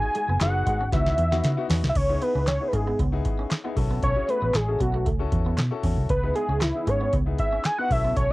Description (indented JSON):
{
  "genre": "early-eighties boogie funk",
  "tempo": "116 BPM",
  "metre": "4/4",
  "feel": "straight",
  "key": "C# minor",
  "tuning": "A4 = 442 Hz",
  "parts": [
    { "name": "fat analog lead", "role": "melody", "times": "0.0-8.3 s", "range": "E4 to G#5", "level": "-26 LUFS", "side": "equal", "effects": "chorus, cassette tape" },
    { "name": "warm grand piano", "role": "accompaniment", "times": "0.0-8.3 s", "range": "B3 to B4", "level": "-33 LUFS", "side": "left 7 dB", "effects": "cassette tape" },
    { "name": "clean electric guitar", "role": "riff", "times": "0.0-8.3 s", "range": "G#3 to C#4", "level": "-35 LUFS", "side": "right 5 dB", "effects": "analog chorus, cassette tape" },
    { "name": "booming analog drum machine", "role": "drums", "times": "0.1-8.3 s", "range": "crash cymbal, handclaps, hi-hat, kick drum, snare drum", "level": "-27 LUFS", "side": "equal", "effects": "cassette tape" },
    { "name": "vintage muted fingered electric bass", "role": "bass", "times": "0.3-8.3 s", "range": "F#1 to C#3", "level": "-25 LUFS", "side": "equal", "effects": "none" }
  ],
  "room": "little or no reverb",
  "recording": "home recording on cassette",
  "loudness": "-22 LUFS",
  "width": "side -19 dB against mid",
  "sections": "0.0-2.0 A section; 2.0-8.3 B section",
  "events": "drum fill 0.9-2.0; analog synth lead solo 2.0-8.3",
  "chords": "0.0 G#m7; 0.9 C#m11; 2.0 C#m9; 3.8 B9sus4; 6.1 C#m9"
}